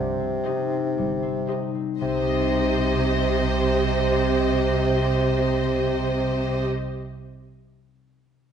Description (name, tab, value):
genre	cinematic, playful, whimsical film cue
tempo	117 BPM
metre	4/4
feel	straight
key	C minor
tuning	A4 = 439 Hz
part	clear bassoon	accompaniment	0.0-6.7 s	C3	-26 LUFS	right 1 dB	none
part	concert harp	arpeggios	0.0-6.9 s	C3 to Eb5	-30 LUFS	left 9 dB	none
part	rich studio double bass section	bass	0.0-6.7 s	G1 to C2	-29 LUFS	right 3 dB	none
part	warm symphonic cello section	bass	0.0-6.7 s	G2 to C3	-28 LUFS	right 2 dB	none
part	warm studio violin section	second line	0.4-6.7 s	C5	-30 LUFS	left 1 dB	none
part	warm studio violin section	melody	0.5-6.7 s	Eb5	-32 LUFS	left 4 dB	none
part	warm studio viola section	accompaniment	0.5-6.7 s	G4	-30 LUFS	right 1 dB	none
room	wet scoring stage reverb, RT60 1.5 s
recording	nothing above 10.9 kHz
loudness	-21 LUFS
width	side -8 dB against mid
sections	0.0-2.0 A section; 2.0-6.1 B section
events	none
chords	0.0 Cm